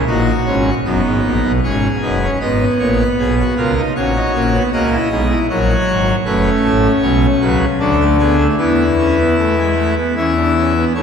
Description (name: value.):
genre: classical, baroque-style 4-part fugue for pipe organ.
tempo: 77 BPM.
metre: 3/4.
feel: straight.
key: unclear.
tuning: A4 = 439 Hz.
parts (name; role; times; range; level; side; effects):
pipe organ, full organ; solo; 0.0-11.0 s; F#1 to E5; -13 LUFS; equal; none.
room: wet church reverb, RT60 3.2 s.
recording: heard from further back in the room.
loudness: -13 LUFS.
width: side -7 dB against mid.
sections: 0.0-1.6 A section; 1.6-11.0 B section.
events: none.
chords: 0.0 F#/A#; 0.8 B/F#; 1.6 G#m; 3.2 C#7/B; 4.0 F#/A#; 6.3 F#m; 7.8 Bm7/D; 8.6 Esus4; 10.2 E5.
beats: 0.06 0.84 | 1.62 2.41 3.18 | 3.96 4.73 5.50 | 6.26 7.03 7.80 | 8.58 9.38 10.17 | 10.96.